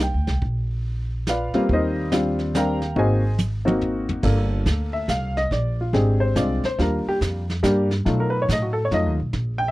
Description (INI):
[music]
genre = jazz piano trio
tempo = 141 BPM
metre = 3/4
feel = swing 64% on 8ths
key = G minor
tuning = A4 = 440 Hz
[part]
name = warm upright piano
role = melody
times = 0.0-9.7 s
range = F#3 to Bb5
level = -22 LUFS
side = left 1 dB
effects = none
[part]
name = upright bass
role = bass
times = 0.0-9.7 s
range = G1 to B2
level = -23 LUFS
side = equal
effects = none
[part]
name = vintage brush drum kit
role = drums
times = 0.3-9.7 s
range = brushed snare drum, crash cymbal, hi-hat, kick drum, snare drum, toms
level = -27 LUFS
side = right 1 dB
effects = none
[sound]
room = little or no reverb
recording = dry, close 1970s-style studio recording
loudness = -20 LUFS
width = side -18 dB against mid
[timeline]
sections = 0.0-4.2 A section; 4.2-9.7 B section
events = drum fill 3.4-4.2; upright piano solo 4.2-9.7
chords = 0.4 Bb; 1.7 Ebmaj13; 3.0 Ab9; 4.2 Gm9; 5.5 Bb13; 6.8 Ebmaj9; 8.1 B7#11